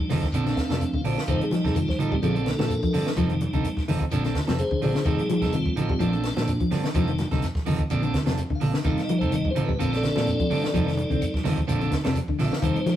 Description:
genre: afrobeat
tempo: 127 BPM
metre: 4/4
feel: swing 54% on 16ths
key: unclear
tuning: A4 = 441 Hz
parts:
  - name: tonewheel organ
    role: accompaniment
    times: 0.0-13.0 s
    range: G3 to F5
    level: -28 LUFS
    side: equal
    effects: slow rotary speaker
  - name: congas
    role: percussion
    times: 0.0-13.0 s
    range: none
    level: -30 LUFS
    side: right 2 dB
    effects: none
  - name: semi-hollow electric guitar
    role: arpeggios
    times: 0.1-13.0 s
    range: C3 to G3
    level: -28 LUFS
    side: left 3 dB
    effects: none
  - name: electric guitar at the edge of break-up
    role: stabs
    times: 0.1-12.8 s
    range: F3 to A4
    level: -31 LUFS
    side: right 5 dB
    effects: none
  - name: fingered electric bass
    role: bass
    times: 0.1-12.9 s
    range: F1 to Bb2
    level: -30 LUFS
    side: equal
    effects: none
  - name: compact cocktail drum kit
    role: drums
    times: 0.1-13.0 s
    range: hi-hat, kick drum, snare drum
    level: -30 LUFS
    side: equal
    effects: none
  - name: shekere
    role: percussion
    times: 0.1-13.0 s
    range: none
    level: -35 LUFS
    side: left 1 dB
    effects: none
  - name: claves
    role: percussion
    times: 9.0-12.9 s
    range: none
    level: -50 LUFS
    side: left 2 dB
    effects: none
room: moderate stone room reverb, RT60 1.0 s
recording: rough rehearsal-room recording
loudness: -22 LUFS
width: side -12 dB against mid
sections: 0.0-13.0 A section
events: tonewheel organ solo 0.0-13.0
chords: 0.3 Bbmaj9; 1.3 F7; 2.2 Bbmaj9; 3.2 F7; 4.1 Bbmaj9; 5.1 F7; 6.0 Bbmaj9; 7.0 F7; 7.9 Bbmaj9; 8.8 F7; 9.8 Bbmaj9; 10.7 F7; 11.7 Bbmaj9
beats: 0.34 0.81 | 1.29 1.76 2.23 2.71 | 3.18 3.65 4.12 4.60 | 5.07 5.54 6.01 6.49 | 6.96 7.43 7.90 8.37 | 8.85 9.32 9.79 10.26 | 10.73 11.21 11.68 12.15 | 12.62

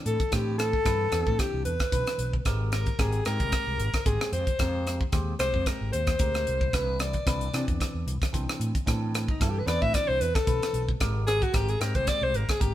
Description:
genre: electric jazz fusion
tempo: 112 BPM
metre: 4/4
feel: swing 54% on 16ths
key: C major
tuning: A4 = 443 Hz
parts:
  - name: barky tine electric piano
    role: accompaniment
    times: 0.0-12.7 s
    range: E3 to D5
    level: -36 LUFS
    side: equal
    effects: phaser
  - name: clear alto saxophone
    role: melody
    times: 0.1-12.7 s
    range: Eb4 to E5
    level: -29 LUFS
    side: left 1 dB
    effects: none
  - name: fretless electric bass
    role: bass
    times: 0.1-12.7 s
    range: Ab1 to C3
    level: -30 LUFS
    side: equal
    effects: none
  - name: tight funk drum kit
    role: drums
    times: 0.1-12.7 s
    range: hi-hat, kick drum, rim click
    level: -28 LUFS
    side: equal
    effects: none
room: light reverb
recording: band playing live in one room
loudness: -24 LUFS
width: side -13 dB against mid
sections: 0.0-12.7 A section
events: alto saxophone solo 0.0-12.7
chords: 0.0 Cmaj9; 2.5 Abmaj9; 6.7 Cmaj9; 11.0 Abmaj9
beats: | 0.32 0.85 1.39 1.92 | 2.46 2.99 3.53 4.06 | 4.60 5.13 5.67 6.20 | 6.74 7.27 7.80 8.34 | 8.87 9.41 9.94 10.47 | 11.01 11.54 12.08 12.61

